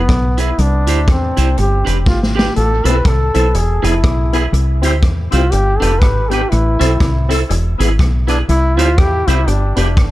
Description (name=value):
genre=ska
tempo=121 BPM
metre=4/4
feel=swing 59% on 8ths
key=A minor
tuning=A4 = 440 Hz
part: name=bright trombone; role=melody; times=0.0-10.1 s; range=B3 to B4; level=-19 LUFS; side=equal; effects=analog delay
part: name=deep dub fingered electric bass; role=bass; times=0.0-10.1 s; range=E1 to E2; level=-15 LUFS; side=equal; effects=none
part: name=vintage drum kit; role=drums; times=0.1-10.1 s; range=hi-hat, kick drum, rim click, snare drum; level=-16 LUFS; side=equal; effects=analog delay
part: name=clean electric guitar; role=accompaniment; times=0.4-9.9 s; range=D4 to C5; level=-22 LUFS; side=right 6 dB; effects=none
part: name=overdriven tonewheel organ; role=stabs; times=2.9-9.9 s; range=B3 to A4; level=-23 LUFS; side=left 4 dB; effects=chorus vibrato, fast rotary speaker
room=light reverb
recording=dark, warm production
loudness=-12 LUFS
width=side -16 dB against mid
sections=0.0-10.1 A section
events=trombone solo 0.0-10.1; drum fill 2.1-2.6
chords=0.0 E; 0.6 C; 1.6 G; 2.6 Am; 3.5 E; 4.5 C; 5.5 G; 6.5 Am; 7.5 E; 8.5 C; 9.5 G